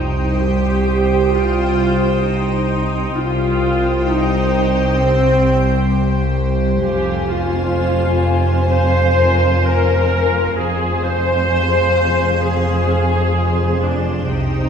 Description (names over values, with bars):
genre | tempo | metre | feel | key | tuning
cinematic, suspense film score | 65 BPM | 4/4 | straight | unclear | A4 = 441 Hz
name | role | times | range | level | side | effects
muted studio violin section | melody | 0.0-14.7 s | G5 to Ab5 | -28 LUFS | left 4 dB | none
muted studio violin section | second line | 0.0-14.7 s | C5 to G5 | -24 LUFS | equal | none
muted studio viola section | accompaniment | 0.0-14.7 s | C4 to C5 | -19 LUFS | equal | none
evolving wavetable pad | sustained chords | 0.0-14.7 s | F4 to C6 | -25 LUFS | right 1 dB | phaser, built-in reverb
muted studio cello section | bass | 0.0-14.7 s | C2 to C3 | -22 LUFS | equal | none
muted studio double bass section | bass | 0.0-14.7 s | F1 to C2 | -22 LUFS | right 1 dB | none
deep rumbling drone | drone | 0.0-14.7 s | C2 to F2 | -22 LUFS | left 2 dB | built-in reverb
muted studio violin section | texture | 0.0-6.4 s | C6 to Eb6 | -31 LUFS | left 3 dB | none
concert harp | texture | 0.4-14.7 s | Ab4 to F6 | -36 LUFS | left 5 dB | none
room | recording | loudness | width
wet scoring stage reverb, RT60 1.6 s | heard from further back in the room | -14 LUFS | side -7 dB against mid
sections
0.0-14.7 A section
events
none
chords
0.0 Cm; 6.8 Fm